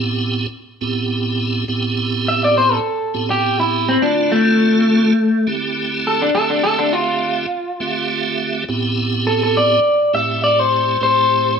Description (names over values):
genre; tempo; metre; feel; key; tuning
blues; 103 BPM; 4/4; swing 54% on 16ths; A minor; A4 = 442 Hz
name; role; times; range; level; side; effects
tonewheel organ; accompaniment; 0.0-11.6 s; A2 to E5; -20 LUFS; right 3 dB; overdrive, chorus vibrato, slow rotary speaker
electric guitar through a small old amp; melody; 2.3-11.6 s; A3 to E5; -15 LUFS; left 1 dB; warbly pitch drift
room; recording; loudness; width
moderate stone room reverb, RT60 1.3 s; band playing live in one room; -15 LUFS; side -6 dB against mid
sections
0.0-11.6 A section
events
clean electric guitar solo 0.0-11.6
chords
0.0 Am7; 4.0 Dm7; 8.7 Am7